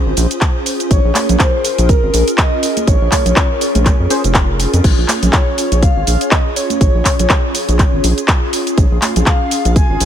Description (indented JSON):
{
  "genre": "deep house",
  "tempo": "122 BPM",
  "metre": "4/4",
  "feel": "swing 57% on 16ths",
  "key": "Bb minor",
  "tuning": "A4 = 442 Hz",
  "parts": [
    { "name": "hollow soft pad", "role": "sustained chords", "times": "0.0-10.1 s", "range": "Db4 to F5", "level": "-20 LUFS", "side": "right 1 dB", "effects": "ensemble chorus, sidechain pumping" },
    { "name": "round analog bass", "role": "bass", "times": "0.1-10.1 s", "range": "F1 to F2", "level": "-15 LUFS", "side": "equal", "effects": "tube saturation, sidechain pumping" },
    { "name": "house drum kit", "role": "drums", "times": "0.2-10.1 s", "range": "crash cymbal, handclaps, hi-hat, shaker", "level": "-18 LUFS", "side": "equal", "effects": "none" },
    { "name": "electronic kick drum", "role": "drums", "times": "0.4-9.9 s", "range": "none", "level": "-14 LUFS", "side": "equal", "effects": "none" },
    { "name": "breathy flute-like synth lead", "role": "melody", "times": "0.9-10.1 s", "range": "Bb4 to Ab5", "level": "-21 LUFS", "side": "left 1 dB", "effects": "wide subtle chorus, ping-pong delay" },
    { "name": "congas", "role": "percussion", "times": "1.1-9.2 s", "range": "none", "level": "-23 LUFS", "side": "right 3 dB", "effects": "none" },
    { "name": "warm analog keys", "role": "stabs", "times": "4.1-4.2 s", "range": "Db4 to C5", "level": "-22 LUFS", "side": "left 3 dB", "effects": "chorus, sidechain pumping, ping-pong delay" }
  ],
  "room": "digital ambience",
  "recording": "none",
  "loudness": "-11 LUFS",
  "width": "side -10 dB against mid",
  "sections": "0.0-10.1 A section",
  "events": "none",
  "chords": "0.0 Bbm9"
}